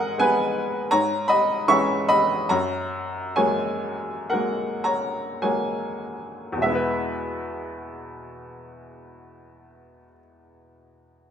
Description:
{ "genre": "classical, lyrical solo piano", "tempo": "49-84 BPM", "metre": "4/4", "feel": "rubato", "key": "E lydian", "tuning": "A4 = 440 Hz", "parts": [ { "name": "bright upright piano", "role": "solo", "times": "0.0-11.3 s", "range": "E2 to C#6", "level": "-22 LUFS", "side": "equal", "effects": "none" } ], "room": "moderate scoring stage reverb, RT60 1.4 s", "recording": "minimal, uncompressed stereo recording", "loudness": "-21 LUFS", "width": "side -8 dB against mid", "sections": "0.0-6.6 A section; 6.6-11.3 B section", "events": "slowing down 0.0-6.6", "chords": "0.0 G#madd9; 0.9 C#m/G#; 2.5 F#add9; 6.6 E", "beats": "0.17 0.91 1.68 | 2.50 3.36 4.32 5.42 | 6.63 7.83 8.99 10.15" }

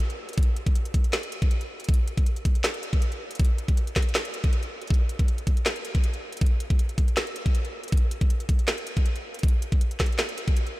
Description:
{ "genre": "hip hop", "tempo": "159 BPM", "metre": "4/4", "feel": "half-time", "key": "none", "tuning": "none", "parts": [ { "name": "trap drum kit", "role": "drums", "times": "0.0-10.7 s", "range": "handclaps, hi-hat, kick drum, snare drum", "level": "-23 LUFS", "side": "equal", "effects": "none" } ], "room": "light reverb, digital ambience", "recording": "none", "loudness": "-23 LUFS", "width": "side -18 dB against mid", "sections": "0.0-10.8 A section", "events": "none", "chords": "none", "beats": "0.00 | 0.38 0.75 1.13 1.51 | 1.89 2.26 2.64 3.02 | 3.40 3.77 4.15 4.53 | 4.90 5.28 5.66 6.04 | 6.41 6.79 7.17 7.55 | 7.92 8.30 8.68 9.05 | 9.43 9.81 10.19 10.56" }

